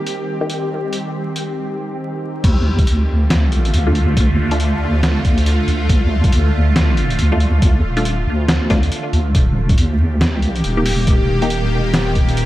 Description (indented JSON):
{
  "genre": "deep dubstep",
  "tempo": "139 BPM",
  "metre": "4/4",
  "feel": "swing 60% on 16ths, half-time",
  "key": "D phrygian",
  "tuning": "A4 = 441 Hz",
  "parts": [
    { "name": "bowed-like drone", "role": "sustained chords", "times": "0.0-12.5 s", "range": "D3 to G4", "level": "-22 LUFS", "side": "equal", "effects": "built-in reverb, phaser" },
    { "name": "wind-like tuned noise texture", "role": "texture", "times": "0.0-1.6 s", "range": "G3 to G4", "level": "-30 LUFS", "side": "left 1 dB", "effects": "built-in reverb, analog chorus" },
    { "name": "trip hop sampler-style drum kit", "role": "drums", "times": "0.1-12.5 s", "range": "crash cymbal, hi-hat, snare drum", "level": "-22 LUFS", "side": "equal", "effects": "none" },
    { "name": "filtered dub chord stab", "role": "stabs", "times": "0.4-0.5, 3.9-4.6, 7.3-11.5 s", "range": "A3 to G4", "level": "-25 LUFS", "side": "left 1 dB", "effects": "phaser, dub echo" },
    { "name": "deep soft wobble bass", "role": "bass", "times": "2.4-12.5 s", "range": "Eb1 to Eb2", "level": "-16 LUFS", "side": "equal", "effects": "chorus" },
    { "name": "electronic kick drum", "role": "drums", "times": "2.4-12.3 s", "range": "none", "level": "-15 LUFS", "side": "equal", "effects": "none" }
  ],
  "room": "light reverb, digital ambience",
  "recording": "vinyl crackle",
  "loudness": "-14 LUFS",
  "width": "side -15 dB against mid",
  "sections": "0.0-2.4 A section; 2.4-12.5 B section",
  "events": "filter sweep on synth stab 0.0-2.4; break 1.6-2.4; drop 2.4-12.5",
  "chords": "0.0 Eb; 2.4 Dm; 9.3 Eb"
}